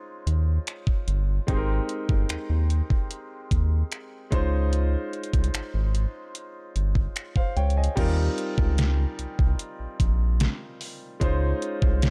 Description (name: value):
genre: contemporary R&B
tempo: 74 BPM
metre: 4/4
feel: straight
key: Eb mixolydian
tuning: A4 = 441 Hz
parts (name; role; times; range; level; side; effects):
- clear concert grand piano; accompaniment; 0.0-12.1 s; G3 to Ab5; -35 LUFS; equal; none
- round analog bass; bass; 0.3-12.1 s; G1 to Eb2; -26 LUFS; equal; none
- detuned 8-bit digital drum machine; drums; 0.3-12.1 s; crash cymbal, finger snaps, hi-hat, kick drum, snare drum; -28 LUFS; equal; overdrive
room: digital ambience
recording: dark, warm production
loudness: -25 LUFS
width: mono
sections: 0.0-8.0 A section; 8.0-12.1 B section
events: none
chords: 0.0 Dbmaj7; 1.5 Abmaj7; 4.3 Dbmaj7; 8.0 Eb6; 11.2 Dbmaj7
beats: 0.67 | 1.48 2.29 3.10 3.92 | 4.73 5.54 6.35 7.16 | 7.97 8.78 9.59 10.40 | 11.21 12.02